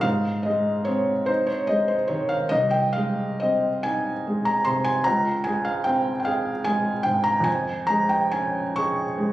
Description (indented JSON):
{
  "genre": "classical, romantic nocturne for solo piano",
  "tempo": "48 BPM (dotted quarters)",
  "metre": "6/8",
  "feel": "uneven beats, rubato",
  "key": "Ab major",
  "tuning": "A4 = 440 Hz",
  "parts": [
    { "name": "felt-muted upright piano", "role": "solo", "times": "0.0-9.3 s", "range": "C2 to Db6", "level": "-21 LUFS", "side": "equal", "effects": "none" }
  ],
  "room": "moderate recital hall reverb, RT60 1.4 s",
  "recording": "recorded on a phone in the room, studio reverb, compression",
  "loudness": "-21 LUFS",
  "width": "side -15 dB against mid",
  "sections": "0.0-9.3 A section",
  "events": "none",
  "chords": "0.0 Ab; 2.5 Ab/C; 5.1 Db5; 7.5 Db/F"
}